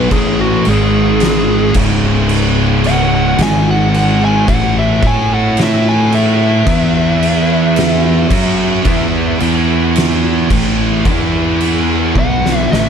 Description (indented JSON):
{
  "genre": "stoner and doom metal",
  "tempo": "55 BPM",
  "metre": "4/4",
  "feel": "straight",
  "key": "unclear",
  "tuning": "A4 = 440 Hz",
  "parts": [
    { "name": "fuzz lead guitar", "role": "melody", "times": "0.0-12.9 s", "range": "F#4 to G#5", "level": "-18 LUFS", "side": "left 1 dB", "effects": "distortion, analog delay" },
    { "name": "scooped high-gain guitar", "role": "riff", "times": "0.0-12.9 s", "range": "C#2 to A4", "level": "-21 LUFS", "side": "left 1 dB", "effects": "distortion" },
    { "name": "thick fuzz guitar", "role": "riff", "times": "0.0-12.9 s", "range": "C#2 to A4", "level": "-18 LUFS", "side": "left 10 dB", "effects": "distortion" },
    { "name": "thick fuzz guitar", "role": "riff", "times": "0.0-12.9 s", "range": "C#2 to A4", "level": "-17 LUFS", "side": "right 11 dB", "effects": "distortion" },
    { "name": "fuzz fingered electric bass", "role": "bass", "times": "0.0-12.9 s", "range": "C#1 to A2", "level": "-17 LUFS", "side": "equal", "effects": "overdrive" },
    { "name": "oversized low-tuned drum kit", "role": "drums", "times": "0.1-12.9 s", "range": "crash cymbal, kick drum, snare drum", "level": "-17 LUFS", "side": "equal", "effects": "none" }
  ],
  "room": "light reverb",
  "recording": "dark, warm production",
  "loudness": "-10 LUFS",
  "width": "side -7 dB against mid",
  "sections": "0.0-12.9 A section",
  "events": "lead electric guitar solo 0.0-12.9; drum fill 12.2-12.9",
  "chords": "0.0 F#m11/A; 0.7 G#5; 1.8 C#5; 3.4 G#5; 4.5 A5; 6.7 E5; 8.3 Bsus24; 9.4 E5; 10.5 A5; 11.1 E5; 12.2 A5",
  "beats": "| 0.12 1.21 2.30 3.39 | 4.48 5.58 6.67 7.76 | 8.86 9.96 11.06 12.16"
}